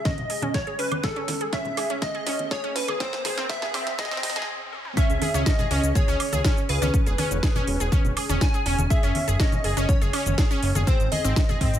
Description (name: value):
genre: progressive house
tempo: 122 BPM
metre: 4/4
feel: straight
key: C# minor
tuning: A4 = 441 Hz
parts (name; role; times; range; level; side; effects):
- plucky unison lead; melody; 0.0-11.8 s; A4 to G#5; -29 LUFS; equal; sidechain pumping, digital delay
- riser; sound effects; 0.0-5.0 s; none; -38 LUFS; right 2 dB; none
- wide unison pluck; arpeggios; 0.1-11.7 s; B#3 to G#4; -29 LUFS; right 1 dB; sidechain pumping, digital delay
- electronic kick drum; drums; 0.1-11.7 s; none; -22 LUFS; equal; none
- house drum kit; drums; 0.1-11.8 s; hi-hat, shaker, snare drum, toms, woodblock; -31 LUFS; right 1 dB; high-pass filter on perc, high-pass filter on snare, high-pass filter on hats, high-pass filter on toms
- congas; percussion; 0.1-11.6 s; none; -32 LUFS; left 2 dB; sidechain pumping on perc
- fat analog bass; bass; 5.1-11.8 s; E1 to C#2; -25 LUFS; equal; sidechain pumping
room: light reverb, digital ambience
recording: high-pass filter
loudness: -21 LUFS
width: side -11 dB against mid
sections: 0.0-5.0 A section; 5.0-11.8 B section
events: build-up 0.0-5.0; drum fill 0.0-4.5, 4.7; riser 0.0-5.0; filter sweep on synth pluck 0.0-5.0; filter sweep 0.0-5.0; stop 4.5-5.0; drop 5.0-11.8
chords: 0.0 C#m; 3.0 G#; 5.0 C#madd9; 6.9 E; 8.9 F#5; 10.9 G#